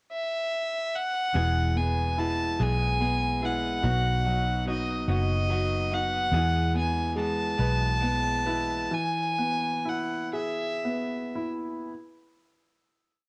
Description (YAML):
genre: six-eight pop ballad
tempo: 48 BPM (dotted quarters)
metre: 6/8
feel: uneven beats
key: E major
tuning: A4 = 440 Hz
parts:
  - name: warm violin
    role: melody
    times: 0.1-11.5 s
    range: D#5 to A5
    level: -31 LUFS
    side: equal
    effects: cassette tape
  - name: direct-recorded clean electric guitar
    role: arpeggios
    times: 1.3-8.9 s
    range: E2 to G#4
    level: -38 LUFS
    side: equal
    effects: none
  - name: vintage muted fingered electric bass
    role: bass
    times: 1.3-8.9 s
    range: E1 to E2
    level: -30 LUFS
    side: equal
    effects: none
  - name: clear baby grand piano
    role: accompaniment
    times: 1.4-11.9 s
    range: B2 to B4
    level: -34 LUFS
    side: equal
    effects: none
room: light reverb, studio reverb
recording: home recording on cassette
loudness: -28 LUFS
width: mono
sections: 0.0-1.4 pickup bar; 1.4-11.9 chorus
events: slowing down 6.3-11.9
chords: 0.0 N.C.; 1.4 E; 3.8 B; 6.3 E